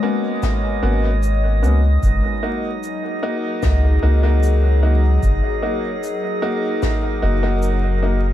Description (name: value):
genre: ambient dub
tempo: 75 BPM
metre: 4/4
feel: straight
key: unclear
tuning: A4 = 442 Hz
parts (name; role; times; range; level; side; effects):
- warbly tape-like pad; sustained chords; 0.0-8.3 s; F#3 to F#5; -25 LUFS; left 2 dB; chorus, built-in reverb, phaser
- clear upright piano; stabs; 0.0-8.2 s; A#3 to F#4; -24 LUFS; left 1 dB; dub echo
- drifting glass-harmonics texture; texture; 0.0-8.3 s; D#5; -29 LUFS; right 3 dB; chorus, built-in reverb
- electronic kick drum; drums; 0.4-7.0 s; none; -22 LUFS; equal; none
- shaker and snare drum; drums; 0.4-7.8 s; none; -33 LUFS; left 4 dB; dub echo
- soft dub sub bass; bass; 0.8-8.3 s; F#1 to C#2; -16 LUFS; equal; tube saturation
room: small room ambience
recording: echo-heavy mix, vinyl crackle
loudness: -16 LUFS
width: side -12 dB against mid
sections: 0.0-8.3 A section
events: none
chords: 0.0 G#m11; 2.0 F#6